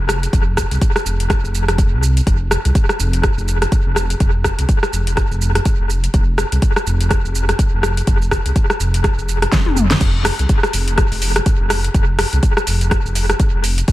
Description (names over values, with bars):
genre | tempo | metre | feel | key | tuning
afro house | 124 BPM | 4/4 | swing 58% on 16ths | unclear | A4 = 439 Hz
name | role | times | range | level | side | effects
dark detuned saw bass | bass | 0.0-13.9 s | F1 to C2 | -18 LUFS | equal | sidechain pumping
deep house drum kit | drums | 0.1-13.9 s | crash cymbal, hi-hat, rim click, shaker, snare drum, toms | -19 LUFS | equal | overdrive, studio reverb, dub echo
electronic kick drum | drums | 0.3-13.9 s | none | -16 LUFS | equal | studio reverb
room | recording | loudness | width
light reverb | echo-heavy mix | -14 LUFS | side -16 dB against mid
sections
0.0-10.0 A section; 10.0-13.9 B section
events
drum fill 9.5-10.0; drop 10.0-13.9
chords
none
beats
| 0.33 0.81 1.30 1.78 | 2.27 2.75 3.23 3.72 | 4.20 4.69 5.17 5.65 | 6.14 6.62 7.11 7.59 | 8.07 8.56 9.04 9.53 | 10.01 10.49 10.98 11.46 | 11.94 12.43 12.91 13.40 | 13.88